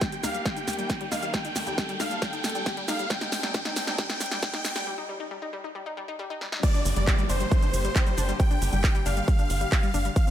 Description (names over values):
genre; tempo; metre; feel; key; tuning
uplifting trance; 136 BPM; 4/4; straight; G minor; A4 = 439 Hz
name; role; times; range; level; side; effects
supersaw chords; melody; 0.0-10.3 s; C5 to G5; -32 LUFS; equal; sidechain pumping, low-pass filter, ping-pong delay
dark chamber string section; sustained chords; 0.0-10.3 s; C3 to A4; -38 LUFS; equal; sidechain pumping
analog pluck; arpeggios; 0.0-10.3 s; F3 to G4; -35 LUFS; left 4 dB; chorus, sidechain pumping, ping-pong delay
tight sequencer bass; bass; 0.0-10.1 s; G1 to Eb2; -28 LUFS; equal; sidechain pumping
big-room dance drum kit; drums; 0.0-10.3 s; crash cymbal, handclaps, hi-hat, shaker, snare drum; -31 LUFS; right 1 dB; none
electronic kick drum; drums; 0.0-10.2 s; none; -24 LUFS; equal; none
riser and downlifter; sound effects; 0.0-10.2 s; none; -37 LUFS; equal; none
room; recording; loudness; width
light reverb, digital ambience; high-pass filter; -24 LUFS; side -11 dB against mid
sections
0.0-6.6 A section; 6.6-10.3 B section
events
build-up 0.0-6.6; drum fill 0.0-4.9, 6.4; riser 0.0-4.9; filter sweep on synth arpeggio sound 0.0-6.6; break 4.9-6.6; drop 6.6-10.3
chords
0.0 Eb; 3.1 Cmadd9; 6.6 Gm